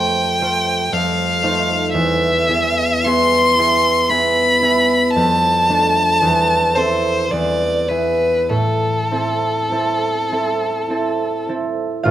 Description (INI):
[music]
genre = classical, romantic duo for violin and harp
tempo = 48-60 BPM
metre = 3/4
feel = rubato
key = A minor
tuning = A4 = 441 Hz
[part]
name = rich violin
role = melody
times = 0.0-11.5 s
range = A4 to C6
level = -16 LUFS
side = left 1 dB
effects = none
[part]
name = concert harp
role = accompaniment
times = 0.0-12.1 s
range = A1 to F5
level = -18 LUFS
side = right 2 dB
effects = none
[sound]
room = moderate recital hall reverb, RT60 1.5 s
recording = close, detailed microphones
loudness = -14 LUFS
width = side -12 dB against mid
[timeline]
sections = 0.0-12.1 A section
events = none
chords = 0.0 F; 0.9 F7; 1.9 E; 5.2 Dm/F; 6.2 Am/E; 7.3 E7; 8.5 Am